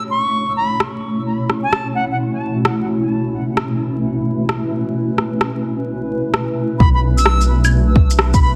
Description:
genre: future garage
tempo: 130 BPM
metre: 4/4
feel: swing 66% on 16ths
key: unclear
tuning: A4 = 439 Hz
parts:
  - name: reedy silver concert flute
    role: melody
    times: 0.0-2.2, 6.8-8.5 s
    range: F#5 to E6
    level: -24 LUFS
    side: equal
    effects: tape echo
  - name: granular cloud pad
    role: sustained chords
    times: 0.0-8.6 s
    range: B2 to C#5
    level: -22 LUFS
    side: equal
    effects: built-in reverb, sidechain pumping
  - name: electronic rim click, shaker and claves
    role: drums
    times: 0.8-8.4 s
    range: none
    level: -21 LUFS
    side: equal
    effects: soft clipping on snare, small room ambience
  - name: dark detuned saw bass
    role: bass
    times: 6.8-8.6 s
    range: B1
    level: -17 LUFS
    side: equal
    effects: sidechain pumping
  - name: electronic kick drum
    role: drums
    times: 6.8-8.4 s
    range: none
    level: -14 LUFS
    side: equal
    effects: small room ambience
room: moderate recital hall reverb, RT60 1.4 s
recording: dense, heavily limited modern master, vinyl crackle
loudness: -18 LUFS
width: mono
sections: 0.0-6.8 A section; 6.8-8.6 B section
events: filter sweep on ambient pad 0.0-6.8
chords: 0.0 A/B; 6.8 Bm7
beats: 0.34 0.80 | 1.26 1.72 2.19 2.65 | 3.11 3.57 4.03 4.49 | 4.95 5.42 5.88 6.34 | 6.80 7.26 7.72 8.19

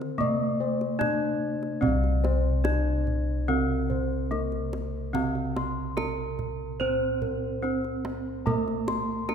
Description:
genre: Javanese gamelan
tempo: 72 BPM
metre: 4/4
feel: straight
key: unclear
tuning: A4 = 439 Hz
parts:
  - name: gamelan-type bronze metallophone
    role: melody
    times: 0.0-9.3 s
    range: Bb3-40c to C5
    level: -30 LUFS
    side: right 2 dB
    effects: none
  - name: gamelan-type bronze metallophone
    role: accompaniment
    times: 0.0-9.3 s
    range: C3 to C4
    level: -34 LUFS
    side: right 2 dB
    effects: none
  - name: kendang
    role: percussion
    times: 0.0-9.3 s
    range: none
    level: -35 LUFS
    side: right 2 dB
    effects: none
  - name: gamelan-type bossed gongs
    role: arpeggios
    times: 0.2-9.3 s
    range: Bb4-40c to C6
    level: -32 LUFS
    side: left 4 dB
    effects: none
  - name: gamelan-type bossed gongs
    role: bass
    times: 0.2-9.3 s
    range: C2 to Bb4-40c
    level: -30 LUFS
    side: left 1 dB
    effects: none
room: moderate concert hall reverb, RT60 2.2 s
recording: minimal, uncompressed stereo recording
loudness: -25 LUFS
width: side -7 dB against mid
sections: 0.0-1.8 A section; 1.8-9.3 B section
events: none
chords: none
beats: 0.20 1.00 | 1.82 2.65 3.48 4.31 | 5.14 5.97 6.81 7.64 | 8.47 9.30

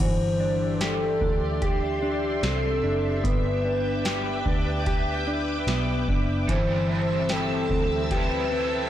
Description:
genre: dream pop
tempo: 74 BPM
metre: 4/4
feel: straight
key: unclear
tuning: A4 = 442 Hz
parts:
  - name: hollow clarinet-like synth lead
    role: melody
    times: 0.0-8.9 s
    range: G4 to C5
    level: -28 LUFS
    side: equal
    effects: chorus, digital delay
  - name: string machine, full ensemble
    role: sustained chords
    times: 0.0-8.9 s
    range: C4 to E6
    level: -31 LUFS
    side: equal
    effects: ensemble chorus
  - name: mellow electric guitar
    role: arpeggios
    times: 0.0-8.9 s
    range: E3 to G4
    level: -28 LUFS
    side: left 2 dB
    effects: analog chorus, digital delay
  - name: vintage muted picked electric bass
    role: bass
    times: 0.0-8.9 s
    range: F#1 to D2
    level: -29 LUFS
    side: equal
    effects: none
  - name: booming analog drum machine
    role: drums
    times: 0.0-8.3 s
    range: crash cymbal, hi-hat, kick drum, snare drum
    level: -28 LUFS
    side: equal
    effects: none
  - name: crunchy overdriven guitar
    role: accompaniment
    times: 6.5-8.9 s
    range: G3 to A4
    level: -32 LUFS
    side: right 4 dB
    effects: tremolo, analog chorus
room: light reverb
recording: blown-out, overdriven recording, overdrive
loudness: -22 LUFS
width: side -11 dB against mid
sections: 0.0-8.9 A section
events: none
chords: 0.0 Cadd9/G; 3.2 Em7/G; 6.5 Am/G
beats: | 0.00 0.81 1.62 2.43 | 3.24 4.05 4.87 5.67 | 6.49 7.30 8.11

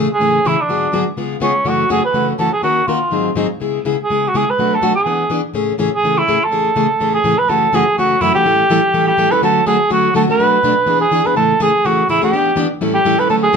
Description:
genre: jazz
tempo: 248 BPM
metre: 4/4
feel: swing 56% on 8ths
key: A major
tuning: A4 = 440 Hz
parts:
  - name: picked plugged-in steel-string acoustic guitar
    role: accompaniment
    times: 0.0-13.6 s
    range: F#2 to A#4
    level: -17 LUFS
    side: left 2 dB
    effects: none
  - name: mellow cor anglais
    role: melody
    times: 0.1-13.6 s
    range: C#4 to B4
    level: -14 LUFS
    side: right 2 dB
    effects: plate reverb
room: moderate club reverb, RT60 0.8 s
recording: none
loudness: -13 LUFS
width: side -6 dB against mid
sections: 0.0-7.5 A section; 7.5-13.6 B section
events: none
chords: 0.0 Amaj7; 0.7 G#m7b5; 1.2 C#7; 1.7 F#m7; 2.6 D#m7; 3.1 G#7; 3.6 C#m7; 4.6 Bm7; 5.1 E7; 5.5 Amaj7; 7.5 F#m9; 8.4 A7; 9.4 Dmaj7; 10.4 Bm7; 10.9 E7; 11.3 Amaj7; 12.3 Em7; 12.8 A7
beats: 0.20 0.45 | 0.69 0.93 1.17 1.42 | 1.66 1.90 2.14 2.38 | 2.63 2.87 3.11 3.35 | 3.60 3.84 4.08 4.33 | 4.57 4.81 5.05 5.29 | 5.54 5.78 6.02 6.26 | 6.51 6.75 6.99 7.23 | 7.47 7.72 7.96 8.20 | 8.44 8.69 8.93 9.17 | 9.41 9.65 9.90 10.14 | 10.38 10.62 10.86 11.11 | 11.35 11.59 11.83 12.07 | 12.32 12.56 12.80 13.04 | 13.29 13.53

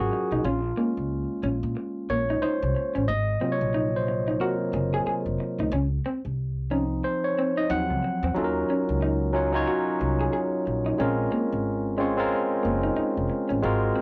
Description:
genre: R&B, neo-soul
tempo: 91 BPM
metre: 4/4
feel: swing 60% on 16ths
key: Eb dorian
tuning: A4 = 440 Hz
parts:
  - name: barky tine electric piano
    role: accompaniment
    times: 0.0-14.0 s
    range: C3 to Gb5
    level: -28 LUFS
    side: equal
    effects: overdrive
  - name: upright bass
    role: bass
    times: 0.0-13.9 s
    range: F1 to Bb2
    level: -31 LUFS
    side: equal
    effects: none
  - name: electric guitar through a small old amp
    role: second line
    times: 0.1-14.0 s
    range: Bb3 to Ab4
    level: -32 LUFS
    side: equal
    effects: none
room: moderate booth ambience, RT60 0.2 s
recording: home recording on cassette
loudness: -26 LUFS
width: mono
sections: 0.0-8.3 A section; 8.3-14.0 B section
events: tine electric piano solo 0.0-8.3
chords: 0.4 Bbm9; 3.1 Ab13 (rootless); 5.7 Dbmaj9; 7.7 Ebm69; 8.3 Ebm9; 11.0 Bbm9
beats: | 0.43 1.09 1.75 2.41 | 3.07 3.73 4.39 5.05 | 5.71 6.37 7.02 7.68 | 8.34 9.00 9.66 10.32 | 10.98 11.64 12.30 12.96 | 13.62

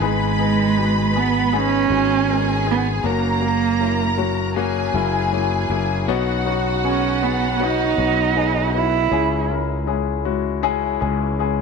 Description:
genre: pop ballad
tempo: 79 BPM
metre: 4/4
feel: straight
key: B major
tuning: A4 = 442 Hz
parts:
  - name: dark cello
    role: melody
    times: 0.0-9.5 s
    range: G#3 to E4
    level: -20 LUFS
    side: right 10 dB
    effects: none
  - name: warm symphonic violin section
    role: second line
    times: 0.0-9.1 s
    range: F#4 to B5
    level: -24 LUFS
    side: equal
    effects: none
  - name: warm baby grand piano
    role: accompaniment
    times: 0.0-11.6 s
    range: G#2 to D#5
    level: -23 LUFS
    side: left 12 dB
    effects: none
  - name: sustaining fretless electric bass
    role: bass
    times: 0.0-11.6 s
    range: F#1 to C#2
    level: -24 LUFS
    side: equal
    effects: none
room: moderate plate reverb, RT60 3.2 s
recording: 1960s-style stereo with parts hard left and right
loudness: -17 LUFS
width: side -5 dB against mid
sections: 0.0-11.6 A section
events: none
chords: 0.0 G#m; 3.0 F#; 6.1 Badd9; 9.1 C#m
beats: | 0.00 0.76 1.52 2.28 | 3.04 3.80 4.56 5.32 | 6.08 6.84 7.60 8.36 | 9.12 9.88 10.64 11.40

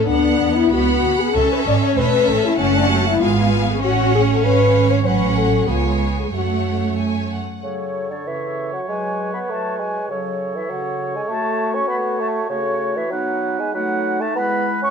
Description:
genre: quick classical-period movement for symphony orchestra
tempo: 97 BPM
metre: 2/4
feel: rubato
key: F# minor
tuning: A4 = 440 Hz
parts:
  - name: warm symphonic violin section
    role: melody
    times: 0.0-7.6 s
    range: E#5 to B5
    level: -28 LUFS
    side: left 5 dB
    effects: none
  - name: warm chamber viola section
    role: accompaniment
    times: 0.0-7.4 s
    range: A3 to C#4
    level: -24 LUFS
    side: right 1 dB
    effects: none
  - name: mellow French horn section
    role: sustained chords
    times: 0.0-14.9 s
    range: C#3 to D5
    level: -21 LUFS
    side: left 6 dB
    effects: none
  - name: dark studio double bass section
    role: bass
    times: 0.0-7.4 s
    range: E1 to F#2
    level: -21 LUFS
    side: right 5 dB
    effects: none
  - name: warm studio cello section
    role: bass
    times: 0.0-7.3 s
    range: F#3 to C#4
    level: -23 LUFS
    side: right 4 dB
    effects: none
  - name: rich chamber violin section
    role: second line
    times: 0.1-7.4 s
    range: C#5 to F#5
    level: -26 LUFS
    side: equal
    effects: none
  - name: mellow clarinet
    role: second line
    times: 7.6-14.8 s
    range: D#4 to B4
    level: -30 LUFS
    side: left 1 dB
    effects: none
  - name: mellow concert flute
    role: second line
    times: 7.6-14.9 s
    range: C#5 to C#6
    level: -28 LUFS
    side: left 2 dB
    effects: none
  - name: mellow oboe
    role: second line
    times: 7.6-14.9 s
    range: B4 to C#5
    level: -28 LUFS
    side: right 2 dB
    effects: none
  - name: mellow bassoon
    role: accompaniment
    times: 7.6-14.9 s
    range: C#3 to C#4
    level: -24 LUFS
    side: right 3 dB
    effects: none
room: light reverb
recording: close, detailed microphones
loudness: -17 LUFS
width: side -6 dB against mid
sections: 0.0-7.6 A section; 7.6-14.9 B section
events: none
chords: 0.1 Bm/D; 1.4 A; 2.6 F#m; 3.2 Fdim/Ab; 3.8 F#m/A; 4.4 C#7/G#; 5.1 F#m/A; 5.7 C#7; 6.3 F#m; 7.6 F#m/C#; 8.9 Amaj13/F#; 10.1 F#m/C#; 11.3 F#m/A; 13.1 B/F#; 13.7 B7/F#; 14.4 E/G#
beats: | 0.10 0.73 | 1.35 1.97 | 2.59 3.21 | 3.83 4.44 | 5.06 5.69 | 6.33 6.99 | 7.63 8.26 | 8.88 9.49 | 10.10 10.70 | 11.30 11.90 | 12.51 13.13 | 13.75 14.36

